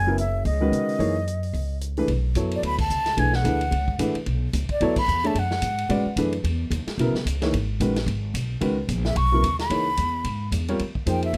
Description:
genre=modal jazz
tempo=220 BPM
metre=4/4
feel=swing 58% on 8ths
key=B dorian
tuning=A4 = 440 Hz
part: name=mellow concert flute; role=melody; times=0.0-6.2, 9.1-11.4 s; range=D5 to C#6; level=-28 LUFS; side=equal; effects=none
part: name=upright bass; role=bass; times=0.0-11.4 s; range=Gb1 to Db3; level=-28 LUFS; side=equal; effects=none
part: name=warm grand piano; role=accompaniment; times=0.1-11.4 s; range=Db3 to E5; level=-28 LUFS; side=equal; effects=none
part: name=vintage drum kit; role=drums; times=0.2-11.4 s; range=crash cymbal, hi-hat, kick drum, ride cymbal, snare drum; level=-36 LUFS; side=equal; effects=none
room=light reverb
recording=none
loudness=-24 LUFS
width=mono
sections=0.0-2.1 A section; 2.1-10.8 B section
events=band accent 2.8, 4.9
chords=0.0 Gb13sus4; 2.1 Bm9; 6.4 C#m9; 10.8 Ebsus4

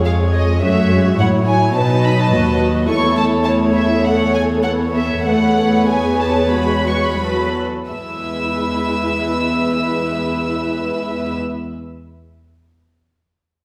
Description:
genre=quick classical-period movement for string orchestra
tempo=86-107 BPM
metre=4/4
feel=rubato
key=E major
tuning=A4 = 440 Hz
part: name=warm symphonic violin section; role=melody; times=0.0-11.4 s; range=D#5 to E6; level=-25 LUFS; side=equal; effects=none
part: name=warm studio violin section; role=second line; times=0.0-11.4 s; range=A4 to E5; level=-25 LUFS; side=equal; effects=none
part: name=dark symphonic viola section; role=accompaniment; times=0.0-11.4 s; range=F#3 to A4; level=-22 LUFS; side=equal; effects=none
part: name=warm symphonic cello section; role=bass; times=0.0-11.4 s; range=D#2 to B2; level=-22 LUFS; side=equal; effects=none
room=wet recital hall reverb, RT60 1.4 s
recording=heard from further back in the room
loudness=-17 LUFS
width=mono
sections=0.0-7.9 A section; 7.9-10.6 B section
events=slowing down 1.7-7.9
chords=0.0 C#/E#; 0.6 F#m; 1.7 B; 2.9 A/E; 5.3 B5/E; 7.9 E

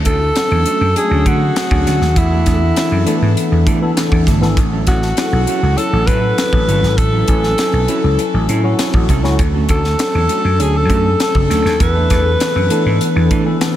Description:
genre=polished 1980s jazz-funk pop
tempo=100 BPM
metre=4/4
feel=straight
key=A major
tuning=A4 = 440 Hz
part: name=mellow electric guitar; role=riff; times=0.0-13.7 s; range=F#3 to A4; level=-25 LUFS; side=right 6 dB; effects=lush chorus
part: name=breathy alto saxophone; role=melody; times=0.1-13.0 s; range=E4 to B4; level=-18 LUFS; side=equal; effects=tape echo
part: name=vintage slap bass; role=bass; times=0.1-13.5 s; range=F#1 to E3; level=-16 LUFS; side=equal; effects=none
part: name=crisp fusion drum kit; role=drums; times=0.1-13.8 s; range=hi-hat, kick drum, snare drum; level=-19 LUFS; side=equal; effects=none
part: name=tine electric piano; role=accompaniment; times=0.4-13.8 s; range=E3 to G#5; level=-20 LUFS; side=left 3 dB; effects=ensemble chorus
room=moderate huge ambient reverb, RT60 7.5 s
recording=dreamy mix soaked in reverb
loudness=-12 LUFS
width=side -12 dB against mid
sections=0.0-13.8 A section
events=none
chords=0.0 Dmaj7; 2.2 E7sus4; 4.6 A6; 9.4 Dmaj7; 11.8 E7sus4

